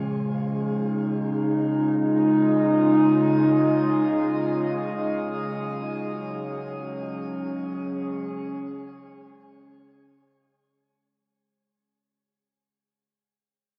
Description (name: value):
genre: ambient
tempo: free time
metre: none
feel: none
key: unclear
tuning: A4 = 440 Hz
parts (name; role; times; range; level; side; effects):
- warbly tape-like pad; sustained chords; 0.0-11.3 s; Db3 to Ab4; -25 LUFS; equal; chorus, built-in reverb
- analog drone; drone; 0.0-11.4 s; Db3 to Ab3; -32 LUFS; equal; chorus
room: wet shimmer reverb, RT60 7.0 s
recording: worn, warbling old tape, cassette tape, warbly pitch drift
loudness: -24 LUFS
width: mono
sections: 0.0-11.3 A section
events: fade-out 3.6-11.3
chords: 0.0 Db; 5.5 Gb5